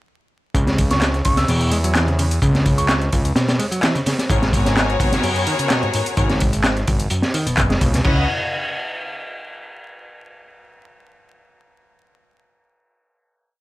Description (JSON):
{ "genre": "breakbeat, breaks", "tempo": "128 BPM", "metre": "4/4", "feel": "straight", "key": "C# dorian", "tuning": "A4 = 440 Hz", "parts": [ { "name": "modern bright picked electric bass", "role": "riff", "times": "0.5-8.3 s", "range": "F#2 to G#3", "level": "-23 LUFS", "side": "equal", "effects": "overdrive" }, { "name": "fat analog bass", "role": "bass", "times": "0.5-8.3 s", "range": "F#1 to E2", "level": "-20 LUFS", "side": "equal", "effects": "none" }, { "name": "crunchy breakbeat drum kit", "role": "drums", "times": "0.5-8.2 s", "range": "crash cymbal, hi-hat, kick drum, snare drum", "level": "-20 LUFS", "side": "equal", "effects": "none" }, { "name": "punchy analog drum machine", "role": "drums", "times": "0.5-8.0 s", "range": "handclaps, hi-hat, ride cymbal", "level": "-25 LUFS", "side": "equal", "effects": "overdrive" }, { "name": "glassy synth bell", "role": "melody", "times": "0.9-3.0 s", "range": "C#6 to E6", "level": "-26 LUFS", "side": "right 1 dB", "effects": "chorus, telephone sound, ping-pong delay" }, { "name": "clear studio string section", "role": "stabs", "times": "4.3-8.2 s", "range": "B3 to F#5", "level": "-23 LUFS", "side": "left 3 dB", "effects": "ping-pong delay" } ], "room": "little or no reverb", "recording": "vinyl crackle", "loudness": "-16 LUFS", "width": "side -17 dB against mid", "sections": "0.5-8.0 drop; 8.0-9.9 final chord", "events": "drop 0.5-8.0", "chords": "0.5 C#m7; 4.3 G#m11; 8.0 N.C." }